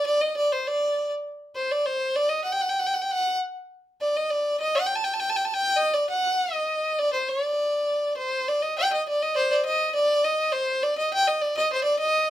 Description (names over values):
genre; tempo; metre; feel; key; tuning
klezmer; 100 BPM; 2/4; straight; unclear; A4 = 440 Hz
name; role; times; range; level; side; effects
clear violin; solo; 0.0-12.3 s; C5 to A5; -22 LUFS; equal; none
room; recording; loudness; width
moderate studio reverb, RT60 0.6 s; none; -22 LUFS; side -12 dB against mid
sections
0.0-8.5 A section; 8.5-12.3 B section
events
none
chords
none